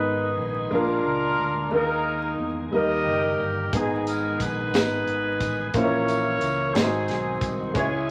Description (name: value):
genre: slow gospel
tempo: 60 BPM (dotted quarters)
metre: 6/8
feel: straight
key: G# minor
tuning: A4 = 440 Hz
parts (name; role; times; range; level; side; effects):
- warm horn section; melody; 0.0-8.1 s; B3 to D#5; -29 LUFS; equal; none
- warm upright piano; accompaniment; 0.0-8.1 s; G#2 to C#5; -28 LUFS; equal; none
- bright tonewheel organ; sustained chords; 0.0-8.1 s; D#3 to A#4; -36 LUFS; equal; chorus vibrato, slow rotary speaker
- fingered electric bass; bass; 0.0-8.1 s; F#1 to E2; -35 LUFS; equal; none
- tight funk drum kit; drums; 3.7-7.9 s; hi-hat, kick drum, snare drum; -29 LUFS; equal; none
- tambourine; percussion; 4.1-7.7 s; none; -48 LUFS; equal; none
room: wet large studio reverb, RT60 0.9 s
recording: vinyl crackle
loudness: -24 LUFS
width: mono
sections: 0.0-8.1 A section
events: none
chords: 0.0 G#m; 0.7 A#7; 1.7 D#sus4; 2.7 D#; 3.7 G#m; 5.7 A#dim; 6.7 G#7